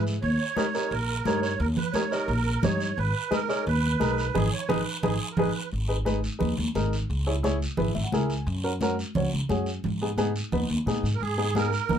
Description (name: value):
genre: latin, cumbia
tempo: 175 BPM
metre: 4/4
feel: straight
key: G# harmonic minor, G# minor from 5.7 s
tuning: A4 = 440 Hz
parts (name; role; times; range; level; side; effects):
- musette accordion; second line; 0.0-5.7, 11.1-12.0 s; G#4 to C#5; -30 LUFS; right 8 dB; none
- dark upright piano; accompaniment; 0.0-12.0 s; B3 to G#5; -28 LUFS; equal; none
- upright bass; bass; 0.0-12.0 s; G#1 to A#2; -28 LUFS; equal; none
- guiro; percussion; 0.1-12.0 s; none; -38 LUFS; right 1 dB; none
- congas; percussion; 0.2-12.0 s; none; -30 LUFS; equal; none
room: light reverb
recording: close, detailed microphones, lossy compression artefacts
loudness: -24 LUFS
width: side -8 dB against mid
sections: 0.0-5.7 A section; 5.7-12.0 B section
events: band accent 4.4-5.7; drum fill 4.9-5.7; upright piano fill 7.8-8.5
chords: 0.2 D#7; 3.0 G#m; 7.1 C#m; 8.5 F#; 9.8 G#m